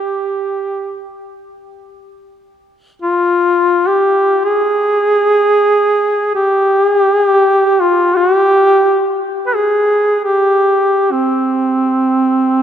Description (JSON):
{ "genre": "caucasian folk, Caucasian lament", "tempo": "free time", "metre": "none", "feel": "none", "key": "unclear", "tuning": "A4 = 440 Hz", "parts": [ { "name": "warm duduk", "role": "solo", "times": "0.0-12.6 s", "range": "C4 to B4", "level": "-11 LUFS", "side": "equal", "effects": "none" } ], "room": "moderate cathedral reverb, RT60 4.6 s", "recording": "minimal, uncompressed stereo recording", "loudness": "-11 LUFS", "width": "side -9 dB against mid", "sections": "0.0-12.6 A section", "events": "slowing down 9.3-12.6", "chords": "none" }